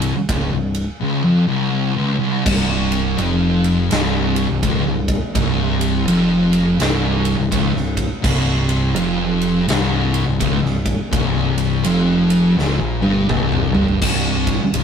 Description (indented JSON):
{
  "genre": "stoner and doom metal",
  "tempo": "83 BPM",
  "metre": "4/4",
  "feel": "swing 63% on 8ths",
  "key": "unclear",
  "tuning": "A4 = 440 Hz",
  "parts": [
    { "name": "thick fuzz guitar", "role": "riff", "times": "0.0-14.8 s", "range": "C2 to Bb2", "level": "-20 LUFS", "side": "left 4 dB", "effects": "distortion" },
    { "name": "thick fuzz guitar", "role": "riff", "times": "0.0-14.8 s", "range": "C2 to Bb2", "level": "-19 LUFS", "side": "right 2 dB", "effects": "distortion" },
    { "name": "growling picked electric bass", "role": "bass", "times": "0.0-14.8 s", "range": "C1 to Bb1", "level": "-23 LUFS", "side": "equal", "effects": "overdrive" },
    { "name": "big rock drum kit", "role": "drums", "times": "0.0-14.8 s", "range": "crash cymbal, kick drum, ride cymbal, snare drum, toms", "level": "-22 LUFS", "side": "equal", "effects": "none" }
  ],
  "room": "light reverb",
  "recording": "rough rehearsal-room recording",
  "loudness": "-15 LUFS",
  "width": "side -7 dB against mid",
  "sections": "0.0-2.5 A section; 2.5-14.0 B section",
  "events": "drum fill 12.6-14.0",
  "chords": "0.0 Dbmaj7/C; 2.5 C5; 14.0 Dbmaj7(no3)/C"
}